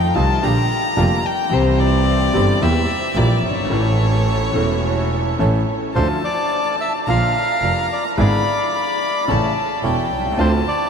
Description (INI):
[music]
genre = tango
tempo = 109 BPM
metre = 4/4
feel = rubato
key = D minor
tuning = A4 = 440 Hz
[part]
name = rich violin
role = second line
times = 0.0-10.9 s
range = C5 to B5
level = -22 LUFS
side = left 3 dB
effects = none
[part]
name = warm concert grand piano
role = accompaniment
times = 0.0-10.6 s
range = E1 to A4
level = -22 LUFS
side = left 2 dB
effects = analog chorus
[part]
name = bandoneon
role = stabs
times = 0.0-10.6 s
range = A3 to Bb4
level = -26 LUFS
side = right 5 dB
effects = diffuse ambient delay
[part]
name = clear double bass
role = bass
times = 0.0-10.6 s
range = E1 to F2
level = -19 LUFS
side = right 2 dB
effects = none
[part]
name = bandoneon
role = melody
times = 6.0-10.9 s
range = C5 to F5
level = -21 LUFS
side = equal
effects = diffuse ambient delay
[sound]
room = wet huge ambient reverb, RT60 8.0 s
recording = dreamy mix soaked in reverb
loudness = -16 LUFS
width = side -6 dB against mid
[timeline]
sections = 0.0-6.0 A section; 6.0-10.9 A section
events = violin solo 0.0-6.0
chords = 0.4 Bb6; 1.5 C; 2.6 Edim; 3.7 A; 6.0 Dm; 7.1 Bb; 8.2 E7/G#; 9.3 A; 10.4 Dm7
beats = 0.43 0.97 | 1.52 2.07 2.62 3.17 | 3.72 4.27 4.83 5.39 | 5.95 6.51 7.07 7.62 | 8.17 8.72 9.28 9.83 | 10.38